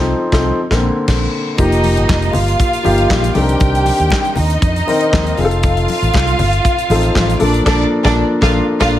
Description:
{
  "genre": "disco",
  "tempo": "119 BPM",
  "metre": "4/4",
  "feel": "straight",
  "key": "unclear",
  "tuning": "A4 = 440 Hz",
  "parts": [
    { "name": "dark baby grand piano", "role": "accompaniment", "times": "0.0-9.0 s", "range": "D3 to Bb4", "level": "-17 LUFS", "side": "left 2 dB", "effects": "none" },
    { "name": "fingered electric bass with an envelope filter", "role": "bass", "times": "0.0-9.0 s", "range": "F1 to F2", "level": "-17 LUFS", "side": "equal", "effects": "none" },
    { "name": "modern studio drum kit", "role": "drums", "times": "0.3-8.9 s", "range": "crash cymbal, handclaps, hi-hat, kick drum, snare drum", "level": "-18 LUFS", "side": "equal", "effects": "none" },
    { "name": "clear studio string section", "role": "second line", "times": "1.6-9.0 s", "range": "D4 to G5", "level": "-18 LUFS", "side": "right 1 dB", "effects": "none" },
    { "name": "congas", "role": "percussion", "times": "1.6-7.5 s", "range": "none", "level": "-25 LUFS", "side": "left 4 dB", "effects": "none" }
  ],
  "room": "moderate large studio reverb, RT60 1.2 s, small room reverb",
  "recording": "none",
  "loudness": "-12 LUFS",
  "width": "side -12 dB against mid",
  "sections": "0.0-1.6 A section; 1.6-9.0 B section",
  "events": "band accent 0.0-1.6, 7.7-9.0",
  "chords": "0.0 F7/C; 0.6 Bbmaj9; 1.6 F9sus4; 3.4 Cm9; 5.4 F7; 7.4 Bbmaj7"
}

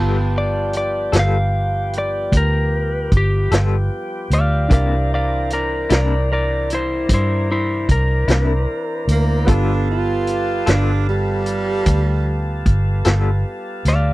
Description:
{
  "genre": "slow blues",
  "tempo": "50 BPM (dotted quarters)",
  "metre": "12/8",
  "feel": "straight",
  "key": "G mixolydian",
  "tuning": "A4 = 438 Hz",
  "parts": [
    { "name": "electric guitar through a small old amp", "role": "accompaniment", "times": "0.0-13.3 s", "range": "C3 to A4", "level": "-23 LUFS", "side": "left 5 dB", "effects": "tremolo" },
    { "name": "warm grand piano", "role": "accompaniment", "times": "0.0-14.1 s", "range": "B3 to A5", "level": "-30 LUFS", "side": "right 2 dB", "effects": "none" },
    { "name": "tonewheel organ", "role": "sustained chords", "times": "0.0-14.1 s", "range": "E3 to Bb4", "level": "-27 LUFS", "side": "right 1 dB", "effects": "slow rotary speaker" },
    { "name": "vintage muted fingered electric bass", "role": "bass", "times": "0.0-14.1 s", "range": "G1 to G2", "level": "-18 LUFS", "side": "equal", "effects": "none" },
    { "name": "lightly driven lead guitar", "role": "melody", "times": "0.4-14.1 s", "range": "E4 to F5", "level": "-22 LUFS", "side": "left 1 dB", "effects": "none" },
    { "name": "vintage drum kit", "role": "drums", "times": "0.7-14.0 s", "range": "hi-hat, kick drum, snare drum", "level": "-18 LUFS", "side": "equal", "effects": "none" },
    { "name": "warm tenor saxophone", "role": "second line", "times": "9.1-12.6 s", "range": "G3 to F4", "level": "-23 LUFS", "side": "right 4 dB", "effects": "none" }
  ],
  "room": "little or no reverb",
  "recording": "dry, close 1970s-style studio recording",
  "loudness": "-16 LUFS",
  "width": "side -18 dB against mid",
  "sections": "0.0-14.1 A section",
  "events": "none",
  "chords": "0.0 G9; 4.7 C9; 9.5 G9"
}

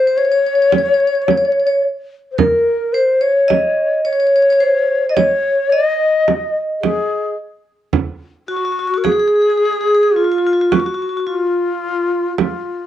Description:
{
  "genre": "Arabic maqam ensemble",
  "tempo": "108 BPM (eighths)",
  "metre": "10/8",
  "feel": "straight",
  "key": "F maqam kurd",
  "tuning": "A4 = 440 Hz",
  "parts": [
    { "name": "vibraphone with medium hard mallets", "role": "melody", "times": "0.0-12.9 s", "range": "F4 to Eb5", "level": "-15 LUFS", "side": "right 1 dB", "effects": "cassette tape" },
    { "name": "breathy bright low ney", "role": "second line", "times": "0.0-12.9 s", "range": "F4 to Eb5", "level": "-18 LUFS", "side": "left 5 dB", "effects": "cassette tape" },
    { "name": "frame drum", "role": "percussion", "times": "0.7-12.6 s", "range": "none", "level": "-17 LUFS", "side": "right 8 dB", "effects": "none" }
  ],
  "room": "moderate spring reverb, RT60 1.2 s, studio reverb",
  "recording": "home recording on cassette",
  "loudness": "-13 LUFS",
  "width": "side -12 dB against mid",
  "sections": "0.0-12.9 A section",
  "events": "none",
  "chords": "none"
}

